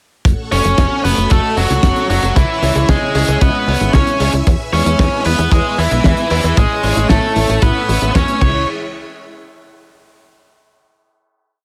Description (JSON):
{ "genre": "italo disco", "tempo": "114 BPM", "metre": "4/4", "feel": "straight", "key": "unclear", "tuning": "A4 = 440 Hz", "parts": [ { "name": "tight sequencer bass", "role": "bass", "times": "0.2-8.7 s", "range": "F#1 to E2", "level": "-19 LUFS", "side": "equal", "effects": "none" }, { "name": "kick drum", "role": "drums", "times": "0.2-8.5 s", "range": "none", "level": "-17 LUFS", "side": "equal", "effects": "none" }, { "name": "string machine, full ensemble", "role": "sustained chords", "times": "0.3-8.7 s", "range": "E4 to E6", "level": "-28 LUFS", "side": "equal", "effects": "ensemble chorus" }, { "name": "damped 70s drum kit", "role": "drums", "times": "0.3-8.5 s", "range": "crash cymbal, hi-hat, snare drum", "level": "-23 LUFS", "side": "equal", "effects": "gated reverb" }, { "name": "biting lead guitar", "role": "melody", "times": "0.5-8.7 s", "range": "E3 to C#5", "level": "-19 LUFS", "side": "equal", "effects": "overdrive, digital delay" }, { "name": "mellow synth brass", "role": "stabs", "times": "0.5-8.6 s", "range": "A2 to E5", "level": "-26 LUFS", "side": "equal", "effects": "chorus" } ], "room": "small room ambience", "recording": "none", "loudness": "-14 LUFS", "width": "mono", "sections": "0.3-8.7 chorus; 8.7-10.8 final hit", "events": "none", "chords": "0.3 F#m; 2.4 C#m; 4.5 E; 6.6 A; 8.4 C#m; 8.7 N.C." }